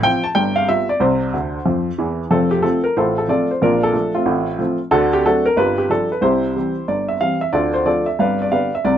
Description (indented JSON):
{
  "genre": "jazz, stride piano",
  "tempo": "184 BPM",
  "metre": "4/4",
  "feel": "swing 63% on 8ths",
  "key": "F major",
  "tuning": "A4 = 440 Hz",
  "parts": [
    { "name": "warm upright piano", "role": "solo", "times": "0.0-9.0 s", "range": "F1 to A5", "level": "-15 LUFS", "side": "equal", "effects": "none" }
  ],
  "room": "light reverb",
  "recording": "nothing above 10.6 kHz",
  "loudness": "-16 LUFS",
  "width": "side -10 dB against mid",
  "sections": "0.0-2.3 A section; 2.3-9.0 B section",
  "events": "upright piano fill 1.3-2.3",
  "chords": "0.4 G7; 1.0 C; 2.3 F; 3.0 F/A; 3.6 Bbmaj7; 4.3 F/A; 4.9 D7; 5.6 G5; 6.2 C; 7.5 Dm; 8.2 G"
}